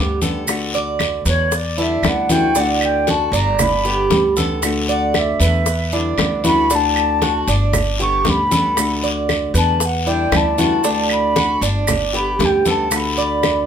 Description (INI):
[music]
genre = latin, Cuban son and guajira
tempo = 116 BPM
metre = 4/4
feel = straight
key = D major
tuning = A4 = 440 Hz
[part]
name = nylon-string guitar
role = accompaniment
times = 0.0-13.7 s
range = D3 to G4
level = -23 LUFS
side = left 2 dB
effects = none
[part]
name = Cuban tres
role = arpeggios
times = 0.0-13.7 s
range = D4 to D5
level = -21 LUFS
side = right 6 dB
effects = none
[part]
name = upright bass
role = bass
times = 0.0-13.6 s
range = G1 to E2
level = -22 LUFS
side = equal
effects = none
[part]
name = bongos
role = percussion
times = 0.2-13.7 s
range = none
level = -24 LUFS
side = left 8 dB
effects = none
[part]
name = congas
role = percussion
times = 0.2-13.7 s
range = none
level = -23 LUFS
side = equal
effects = none
[part]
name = guiro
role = percussion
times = 0.2-13.7 s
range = none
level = -26 LUFS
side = left 5 dB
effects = none
[part]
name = maracas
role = percussion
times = 0.2-13.7 s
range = none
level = -26 LUFS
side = right 4 dB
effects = none
[part]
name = claves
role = percussion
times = 0.5-13.7 s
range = none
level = -26 LUFS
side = right 5 dB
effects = none
[part]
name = mellow jazz flute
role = melody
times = 1.3-13.7 s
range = C#5 to C#6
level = -19 LUFS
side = left 1 dB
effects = none
[sound]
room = moderate studio reverb, RT60 0.5 s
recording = minimal, uncompressed stereo recording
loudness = -15 LUFS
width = side -8 dB against mid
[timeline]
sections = 0.0-13.7 A section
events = flute solo 0.0-13.7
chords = 0.5 D; 1.5 Em7; 2.6 D; 3.6 G; 4.6 D; 5.7 Em7; 6.7 D; 7.7 G; 8.8 D; 9.8 Em7; 10.8 D; 11.9 G; 12.9 D